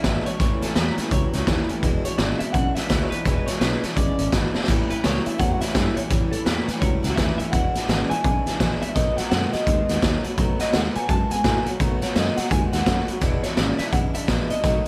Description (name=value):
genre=rockabilly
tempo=168 BPM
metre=4/4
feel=swing 62% on 8ths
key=E mixolydian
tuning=A4 = 439 Hz
part: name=electric guitar through a small old amp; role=melody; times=0.0-14.9 s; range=A4 to A5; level=-31 LUFS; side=equal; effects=harmonic tremolo, tape echo
part: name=picked steel-string acoustic guitar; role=accompaniment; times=0.0-14.9 s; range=E2 to F#4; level=-32 LUFS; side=equal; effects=none
part: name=electric guitar through a small old amp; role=riff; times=0.0-14.8 s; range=E2 to G#3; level=-32 LUFS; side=equal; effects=analog chorus
part: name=fretless electric bass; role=bass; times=0.0-14.8 s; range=E1 to A2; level=-29 LUFS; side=equal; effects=none
part: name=raw garage drum kit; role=drums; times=0.0-14.9 s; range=hi-hat, kick drum, snare drum, splash cymbal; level=-25 LUFS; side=equal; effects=none
room=studio ambience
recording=none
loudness=-22 LUFS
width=mono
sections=0.0-14.9 A section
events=drum fill 4.5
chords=0.4 A7; 1.8 E7; 4.7 A7; 7.5 E7; 9.0 B7; 13.2 E7